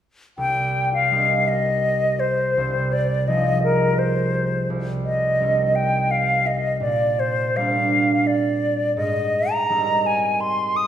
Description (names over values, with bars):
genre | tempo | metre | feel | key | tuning
classical, impressionist duo for flute and harp | 84 BPM | 3/4 | rubato | C minor | A4 = 440 Hz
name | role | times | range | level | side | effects
silver concert flute | melody | 0.4-10.9 s | Bb4 to Eb6 | -20 LUFS | left 1 dB | none
concert harp | accompaniment | 0.4-10.9 s | C2 to Bb4 | -23 LUFS | right 2 dB | none
room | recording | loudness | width
wet recital hall reverb, RT60 1.6 s | heard from further back in the room | -18 LUFS | side -10 dB against mid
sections
0.4-10.9 A section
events
none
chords
0.4 Cm7; 2.6 Fm7/C; 4.7 Cm7; 6.8 Bb69; 9.0 Abmaj9